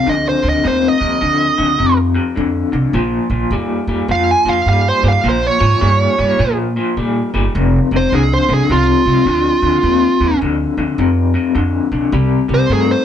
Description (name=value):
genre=electric blues shuffle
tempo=105 BPM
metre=4/4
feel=swing 64% on 8ths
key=unclear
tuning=A4 = 441 Hz
part: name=dark smooth lead guitar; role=melody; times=0.0-13.0 s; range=F4 to Ab5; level=-15 LUFS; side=right 4 dB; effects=overdrive
part: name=electric guitar through a small old amp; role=riff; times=0.0-13.0 s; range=F2 to A3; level=-16 LUFS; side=left 5 dB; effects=tremolo
part: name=upright bass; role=bass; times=0.1-12.9 s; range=F1 to Bb2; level=-17 LUFS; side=right 1 dB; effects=none
room=moderate studio reverb, RT60 0.7 s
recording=band playing live in one room, nothing above 10.5 kHz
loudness=-12 LUFS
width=side -9 dB against mid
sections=0.0-13.0 A section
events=lead electric guitar solo 0.0-13.0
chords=0.0 F5; 2.9 Bb5; 5.2 Bbm; 7.5 F5; 12.1 C5